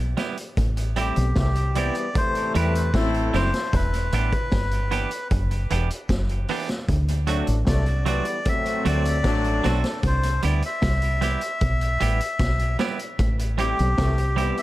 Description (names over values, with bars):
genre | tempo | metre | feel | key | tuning
roots reggae | 76 BPM | 4/4 | straight | unclear | A4 = 440 Hz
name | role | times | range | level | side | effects
deep dub fingered electric bass | bass | 0.0-14.5 s | E1 to E2 | -23 LUFS | equal | none
semi-hollow electric guitar | accompaniment | 0.2-14.6 s | E3 to G4 | -30 LUFS | right 7 dB | tape echo
vintage drum kit | drums | 0.2-14.6 s | hi-hat, kick drum, snare drum | -27 LUFS | equal | dub echo
melodica | melody | 1.0-14.6 s | G4 to E5 | -27 LUFS | left 1 dB | tape echo
bright trombone section | second line | 1.0-14.6 s | C3 to E4 | -29 LUFS | left 2 dB | tape echo
room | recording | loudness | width
small room ambience | echo-heavy mix | -20 LUFS | side -16 dB against mid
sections
0.0-14.6 A section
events
none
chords
0.0 Cmaj7 (rootless); 0.6 Am7; 3.7 Em7; 6.9 D7; 10.0 Cmaj7; 13.2 Am7